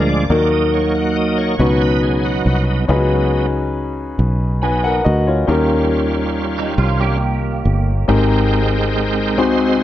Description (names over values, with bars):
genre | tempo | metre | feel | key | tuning
gospel | 46 BPM (dotted quarters) | 6/8 | straight | unclear | A4 = 437 Hz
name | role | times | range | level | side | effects
warm concert grand piano | accompaniment | 0.0-9.8 s | Ab2 to G#5 | -18 LUFS | left 3 dB | none
bright tonewheel organ | sustained chords | 0.0-9.8 s | E#3 to G5 | -20 LUFS | right 2 dB | slow rotary speaker, overdrive, chorus vibrato
fingered electric bass | bass | 0.0-9.8 s | G1 to D#2 | -18 LUFS | equal | none
clean electric guitar | second line | 6.6-8.0 s | G3 to G4 | -24 LUFS | right 7 dB | ensemble chorus
room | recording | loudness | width
light reverb | dark, warm production | -14 LUFS | side -13 dB against mid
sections
0.0-2.9 A section; 2.9-8.1 B section; 8.1-9.8 C section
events
tonewheel organ solo 0.0-2.9, 2.9-8.1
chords
0.3 D#m; 1.6 C#9sus4; 5.5 D#9; 8.1 Abmaj9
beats
| 0.30 1.59 | 2.89 4.19 | 5.49 6.78 | 8.08 9.38